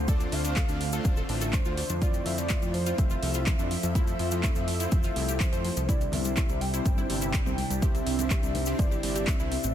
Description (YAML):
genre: progressive house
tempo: 124 BPM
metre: 4/4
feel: straight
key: C major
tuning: A4 = 441 Hz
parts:
  - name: warm velvety synth lead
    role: melody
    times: 0.0-9.7 s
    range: C5 to G5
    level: -36 LUFS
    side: right 1 dB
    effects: chorus, ping-pong delay
  - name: evolving wavetable pad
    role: sustained chords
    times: 0.0-9.7 s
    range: C3 to E5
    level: -37 LUFS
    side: right 3 dB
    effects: chorus, built-in reverb, phaser, sidechain pumping
  - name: wide unison pluck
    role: arpeggios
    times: 0.0-9.7 s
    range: F3 to C5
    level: -36 LUFS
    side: equal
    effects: vintage 12-bit sampler grit, sidechain pumping, digital delay
  - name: fat analog bass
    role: bass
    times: 0.0-9.7 s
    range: D1 to F2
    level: -32 LUFS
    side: equal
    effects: sidechain pumping
  - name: soft supersaw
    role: stabs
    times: 0.1-9.5 s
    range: C3 to E5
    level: -36 LUFS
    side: left 3 dB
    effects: sidechain pumping, digital delay
  - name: electronic kick drum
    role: drums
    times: 0.1-9.4 s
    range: none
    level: -26 LUFS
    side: equal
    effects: overdrive
  - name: pop drum kit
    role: drums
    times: 0.1-9.7 s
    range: handclaps, hi-hat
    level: -35 LUFS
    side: right 1 dB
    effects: overdrive
  - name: tube shaker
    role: percussion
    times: 0.1-9.7 s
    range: none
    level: -40 LUFS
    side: left 7 dB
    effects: none
  - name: congas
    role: percussion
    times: 6.1-8.9 s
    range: none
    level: -39 LUFS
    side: left 1 dB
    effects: none
room: light reverb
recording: dense, heavily limited modern master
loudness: -25 LUFS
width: side -10 dB against mid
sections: 0.0-9.7 A section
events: none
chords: 0.0 Dm7; 2.0 Fmaj7; 5.9 Cadd9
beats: | 0.08 0.56 1.05 1.53 | 2.02 2.50 2.98 3.47 | 3.95 4.44 4.92 5.40 | 5.89 6.37 6.86 7.34 | 7.82 8.31 8.79 9.27